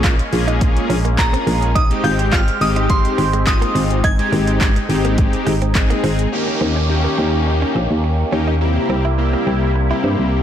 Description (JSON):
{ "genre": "dance-pop", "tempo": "105 BPM", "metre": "4/4", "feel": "straight", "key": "Ab major", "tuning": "A4 = 440 Hz", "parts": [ { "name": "big bright polysynth", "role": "accompaniment", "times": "0.0-10.4 s", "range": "Ab3 to Ab4", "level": "-22 LUFS", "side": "left 2 dB", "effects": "sidechain pumping" }, { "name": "filtered supersaw swell", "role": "sustained chords", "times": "0.0-10.4 s", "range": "C3 to G4", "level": "-24 LUFS", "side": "equal", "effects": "phaser, sidechain pumping" }, { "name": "direct-recorded clean electric guitar", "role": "riff", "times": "0.0-10.1 s", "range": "Ab3 to F4", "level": "-28 LUFS", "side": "right 7 dB", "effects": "analog chorus" }, { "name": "solid FM bass", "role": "bass", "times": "0.0-10.4 s", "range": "Ab1 to G2", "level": "-18 LUFS", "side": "equal", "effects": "sidechain pumping" }, { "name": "pop drum kit", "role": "drums", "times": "0.0-6.3 s", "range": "handclaps, hi-hat, kick drum", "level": "-19 LUFS", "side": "equal", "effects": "overdrive" }, { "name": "glassy synth bell", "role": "melody", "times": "1.2-6.0 s", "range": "Bb5 to Ab6", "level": "-23 LUFS", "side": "right 2 dB", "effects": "chorus, digital delay" }, { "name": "downlifter", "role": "sound effects", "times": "6.3-10.4 s", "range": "none", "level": "-28 LUFS", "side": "right 1 dB", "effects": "none" } ], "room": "light reverb", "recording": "blown-out, overdriven recording, overdrive", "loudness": "-14 LUFS", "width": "side -10 dB against mid", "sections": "0.0-6.3 A section; 6.3-10.4 B section", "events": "none", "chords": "0.0 Bbm7; 1.8 Abmaj7; 6.3 Eb7; 8.6 C7", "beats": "0.04 0.61 1.18 | 1.75 2.33 2.90 3.47 | 4.04 4.61 5.18 5.75 | 6.33 6.90 7.47 8.04 | 8.61 9.18 9.76 10.33" }